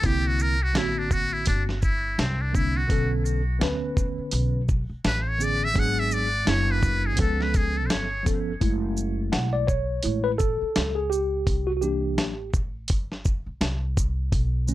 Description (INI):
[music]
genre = hip hop, jazz-hop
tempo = 84 BPM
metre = 4/4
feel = swing 59% on 16ths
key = unclear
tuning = A4 = 440 Hz
[part]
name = trumpet with metal mute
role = melody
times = 0.0-8.3 s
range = C4 to F#5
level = -27 LUFS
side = equal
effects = analog delay
[part]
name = tine electric piano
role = accompaniment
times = 0.0-14.7 s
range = D3 to F#5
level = -28 LUFS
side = equal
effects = overdrive, medium stereo tremolo
[part]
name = upright bass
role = bass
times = 0.0-14.7 s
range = F#1 to D2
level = -27 LUFS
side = equal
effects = none
[part]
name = dusty soul sampler-style drum kit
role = drums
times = 0.0-14.7 s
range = hi-hat, kick drum, shaker, snare drum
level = -25 LUFS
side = equal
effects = none
[sound]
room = little or no reverb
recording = none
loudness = -22 LUFS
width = side -15 dB against mid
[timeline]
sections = 0.0-8.6 A section; 8.6-14.7 A section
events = muted trumpet solo 0.0-8.6; tine electric piano solo 8.6-14.7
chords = 0.0 C9; 2.9 Bm9; 5.8 G#m7b5; 7.2 C#7b13; 8.6 F#m7; 11.5 C9